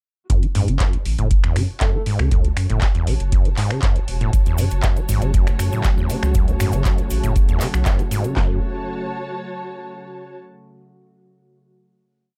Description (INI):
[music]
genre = acid house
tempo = 119 BPM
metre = 4/4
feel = straight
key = F# minor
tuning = A4 = 440 Hz
[part]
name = acid bass, saw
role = riff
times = 0.3-8.6 s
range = F#1 to F#3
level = -26 LUFS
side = equal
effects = overdrive, sidechain pumping, tape echo
[part]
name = saturated sub bass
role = bass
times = 0.3-8.6 s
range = E1 to F#2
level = -24 LUFS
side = equal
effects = tube saturation, sidechain pumping
[part]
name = electro analog drum machine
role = drums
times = 0.3-8.5 s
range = handclaps, kick drum, snare drum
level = -21 LUFS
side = equal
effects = studio reverb
[part]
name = electro analog drum machine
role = drums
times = 0.3-8.3 s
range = finger snaps, handclaps, hi-hat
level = -31 LUFS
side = equal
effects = studio reverb
[part]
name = muted studio string section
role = texture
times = 0.3-10.3 s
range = F#4 to A5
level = -36 LUFS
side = equal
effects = sidechain pumping
[part]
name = breathy flute-like synth lead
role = melody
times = 1.8-2.0 s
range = A4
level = -37 LUFS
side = equal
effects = lush chorus, tape echo
[part]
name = warbly tape-like pad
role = sustained chords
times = 5.0-8.6 s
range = C#3 to F#4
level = -32 LUFS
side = equal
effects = chorus, built-in reverb, vintage 12-bit sampler grit, sidechain pumping
[part]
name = cabasa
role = percussion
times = 4.3-8.3 s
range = none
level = -39 LUFS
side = equal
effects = none
[sound]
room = little or no reverb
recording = none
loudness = -19 LUFS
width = mono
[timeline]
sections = 0.3-8.4 groove; 8.4-10.4 final chord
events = fade-in on string section 0.3-8.4; band accent 7.9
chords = 0.3 F#m